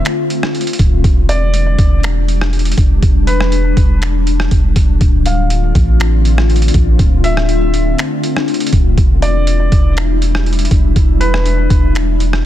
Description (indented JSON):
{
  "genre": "hip hop, atmospheric cloud-rap",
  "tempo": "121 BPM",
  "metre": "4/4",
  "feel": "half-time",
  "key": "unclear",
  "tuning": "A4 = 444 Hz",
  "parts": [
    { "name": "glassy FM pad", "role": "sustained chords", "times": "0.0-12.5 s", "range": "D3 to F4", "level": "-18 LUFS", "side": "left 3 dB", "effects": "ensemble chorus, built-in reverb" },
    { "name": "downlifter", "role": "sound effects", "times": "0.0-1.0 s", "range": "none", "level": "-45 LUFS", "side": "equal", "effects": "none" },
    { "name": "trip hop sampler-style drum kit", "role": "drums", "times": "0.1-12.4 s", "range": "finger snaps, hi-hat, kick drum, rim click", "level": "-14 LUFS", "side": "equal", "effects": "soft clipping on snare" },
    { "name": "soft 808-style bass", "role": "bass", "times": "0.8-12.4 s", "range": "D1 to A1", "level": "-14 LUFS", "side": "equal", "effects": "none" },
    { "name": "felt-muted upright piano", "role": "melody", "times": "1.3-11.9 s", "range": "B4 to F5", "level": "-22 LUFS", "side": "right 1 dB", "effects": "digital delay" }
  ],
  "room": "little or no reverb",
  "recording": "dense, heavily limited modern master",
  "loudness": "-10 LUFS",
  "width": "side -12 dB against mid",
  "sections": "0.0-12.5 A section",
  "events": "none",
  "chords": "0.0 Dm7; 1.0 Em7; 5.0 Dm7; 9.0 Em7"
}